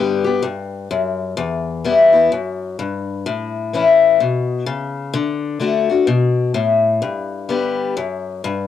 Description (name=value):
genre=country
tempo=127 BPM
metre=4/4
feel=swing 61% on 8ths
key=D major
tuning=A4 = 441 Hz
part: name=picked acoustic archtop guitar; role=solo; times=0.0-8.7 s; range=E2 to G4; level=-16 LUFS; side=left 4 dB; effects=cassette tape
room=wet small room reverb, RT60 0.5 s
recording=home recording on cassette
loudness=-16 LUFS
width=side -10 dB against mid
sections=0.0-8.7 A section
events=none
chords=0.0 G; 1.4 Em; 3.3 A; 5.1 D; 7.0 G